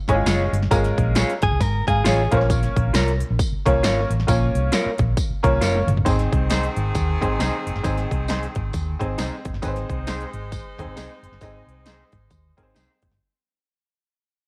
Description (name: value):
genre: uptempo 1960s-style soul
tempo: 134 BPM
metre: 4/4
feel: swing 60% on 8ths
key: unclear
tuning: A4 = 437 Hz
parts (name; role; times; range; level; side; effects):
- clear upright piano; accompaniment; 0.1-13.0 s; Ab3 to Ab5; -27 LUFS; equal; none
- vintage muted fingered electric bass; bass; 0.1-13.2 s; Gb1 to Ab2; -25 LUFS; equal; none
- big-room dance drum kit; drums; 0.1-13.2 s; hi-hat, kick drum, snare drum, toms; -27 LUFS; equal; overdrive
- electric guitar through a small old amp; stabs; 0.3-12.9 s; Eb4 to Db5; -30 LUFS; equal; none
- tambourine; percussion; 0.3-12.9 s; none; -38 LUFS; equal; none
- direct-recorded clean electric guitar; riff; 1.4-2.3 s; Ab4 to Bb4; -26 LUFS; equal; none
- bright saxophone section; second line; 6.1-13.0 s; Eb3 to C5; -35 LUFS; equal; none
room: light reverb, digital ambience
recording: none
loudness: -21 LUFS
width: mono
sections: 0.0-6.1 A section; 6.1-13.2 B section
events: drum fill 5.6-6.1; fade-out 6.1-13.2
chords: 0.0 Db; 2.3 Bbm; 6.1 Ab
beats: 0.27 | 0.71 1.16 1.60 2.05 | 2.50 2.94 3.39 3.83 | 4.28 4.73 5.17 5.62 | 6.06 6.51 6.95 7.40 | 7.84 8.29 8.74 9.18 | 9.63 10.07 10.52 10.97 | 11.41 11.86 12.31 12.76